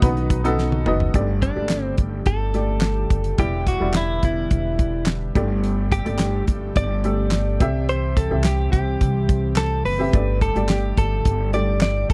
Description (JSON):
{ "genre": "piano-driven pop", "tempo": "107 BPM", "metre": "4/4", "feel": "straight", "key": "unclear", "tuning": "A4 = 443 Hz", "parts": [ { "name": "direct-recorded clean electric guitar", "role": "melody", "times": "0.0-12.1 s", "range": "D4 to D5", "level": "-28 LUFS", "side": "equal", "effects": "slapback echo" }, { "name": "clear upright piano", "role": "accompaniment", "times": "0.0-12.1 s", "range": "G2 to F#5", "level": "-29 LUFS", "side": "equal", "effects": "none" }, { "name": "airy breathy pad", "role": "sustained chords", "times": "0.0-12.1 s", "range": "D3 to G4", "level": "-35 LUFS", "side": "equal", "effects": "none" }, { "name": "upright bass", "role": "bass", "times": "0.0-12.1 s", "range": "E1 to C2", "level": "-25 LUFS", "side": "equal", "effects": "none" }, { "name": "damped 70s drum kit", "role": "drums", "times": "0.0-12.1 s", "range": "handclaps, hi-hat, kick drum, snare drum, toms", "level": "-22 LUFS", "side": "equal", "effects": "none" } ], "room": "little or no reverb", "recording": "dry, close 1970s-style studio recording", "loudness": "-21 LUFS", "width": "mono", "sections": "0.0-1.1 A section; 1.1-12.1 B section", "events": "drum fill 0.6-1.1", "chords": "0.0 B; 1.1 Gsus2; 3.4 Em7; 5.4 Gsus2; 7.6 C; 10.1 Gsus2", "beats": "0.02 0.58 | 1.14 1.71 2.27 2.83 | 3.39 3.95 4.51 5.08 | 5.64 6.20 6.76 7.32 | 7.88 8.45 9.01 9.57 | 10.13 10.69 11.26 11.82" }